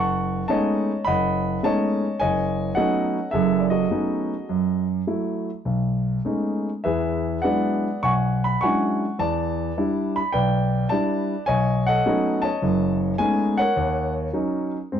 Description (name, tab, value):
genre	solo jazz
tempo	104 BPM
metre	4/4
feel	swing 69% on 8ths, rubato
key	B mixolydian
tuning	A4 = 440 Hz
part	warm grand piano	solo	0.0-15.0 s	F#1 to C#6	-20 LUFS	equal	none
room	moderate studio reverb, RT60 0.8 s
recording	dark, warm production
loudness	-20 LUFS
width	side -8 dB against mid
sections	0.0-15.0 A section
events	none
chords	0.0 B13; 4.5 F#m7; 5.7 B13; 6.8 E13; 9.2 Em7; 11.5 B13; 13.8 D#m7